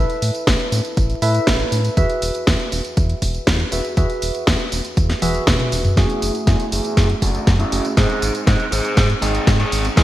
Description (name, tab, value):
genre	italo disco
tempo	120 BPM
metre	4/4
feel	straight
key	E major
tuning	A4 = 440 Hz
part	tine electric piano	stabs	0.0-10.0 s	G#3 to E5	-24 LUFS	right 1 dB	wide subtle chorus, digital delay
part	round analog bass	bass	0.0-10.0 s	E1 to A2	-21 LUFS	equal	none
part	house drum kit	drums	0.1-10.0 s	hi-hat, snare drum, tambourine, toms	-22 LUFS	equal	high-pass filter on hats, high-pass filter on perc, high-pass filter on snare, high-pass filter on toms, high-pass filter on room, gated reverb
part	electronic kick drum	drums	0.5-10.0 s	none	-18 LUFS	equal	none
part	dark smooth lead guitar	melody	6.0-10.0 s	A3 to B#4	-22 LUFS	equal	overdrive, low-pass filter, digital delay
room	moderate lush hall reverb, RT60 1.8 s, digital ambience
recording	bright 1980s-style digital production, vinyl crackle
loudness	-16 LUFS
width	side -14 dB against mid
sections	0.0-6.0 A section; 6.0-10.0 B section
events	drum fill 5.2-6.0, 6.0-10.0; filter sweep on lead electric guitar 6.0-10.0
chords	0.0 Asus2; 2.0 Eadd9; 6.0 F#madd9; 8.0 G#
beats	0.47 0.97 1.47 | 1.97 2.47 2.97 3.47 | 3.97 4.47 4.97 5.47 | 5.97 6.47 6.97 7.47 | 7.97 8.47 8.97 9.47 | 9.97